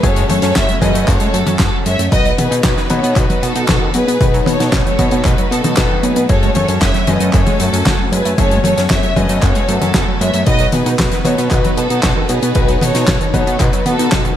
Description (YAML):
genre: italo disco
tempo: 115 BPM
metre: 4/4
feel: straight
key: unclear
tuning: A4 = 440 Hz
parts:
  - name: warm studio violin section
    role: melody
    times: 0.0-14.4 s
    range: F#4 to E5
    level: -19 LUFS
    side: equal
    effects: ping-pong delay
  - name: phased string machine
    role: sustained chords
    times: 0.0-14.4 s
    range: F#3 to G#5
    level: -23 LUFS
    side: equal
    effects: ensemble chorus, phaser
  - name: analog pluck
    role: arpeggios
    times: 0.0-14.3 s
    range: D#3 to F#4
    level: -24 LUFS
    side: right 5 dB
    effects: chorus, digital delay
  - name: bright baby grand piano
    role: stabs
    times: 0.0-14.4 s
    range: A3 to G#5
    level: -24 LUFS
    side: left 5 dB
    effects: none
  - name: fat analog bass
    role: bass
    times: 0.0-14.3 s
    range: F#1 to B2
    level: -18 LUFS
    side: equal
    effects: none
  - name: damped 70s drum kit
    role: drums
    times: 0.0-14.4 s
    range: handclaps, hi-hat, snare drum, toms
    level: -19 LUFS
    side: left 1 dB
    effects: studio reverb, gated reverb
  - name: electronic kick drum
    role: drums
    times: 0.0-14.2 s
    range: none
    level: -17 LUFS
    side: equal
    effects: studio reverb
  - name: downlifter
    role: sound effects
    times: 0.0-2.1 s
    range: none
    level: barely audible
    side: none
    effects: none
room: studio reverb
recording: none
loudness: -12 LUFS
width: side -10 dB against mid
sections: 0.0-14.4 A section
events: drum fill 13.9-14.4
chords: 0.0 F#madd9; 2.1 B; 6.3 F#madd9; 10.5 B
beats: | 0.03 0.56 1.08 1.60 | 2.12 2.64 3.16 3.69 | 4.21 4.73 5.25 5.77 | 6.29 6.82 7.34 7.86 | 8.38 8.90 9.43 9.95 | 10.47 10.99 11.51 12.03 | 12.56 13.08 13.60 14.12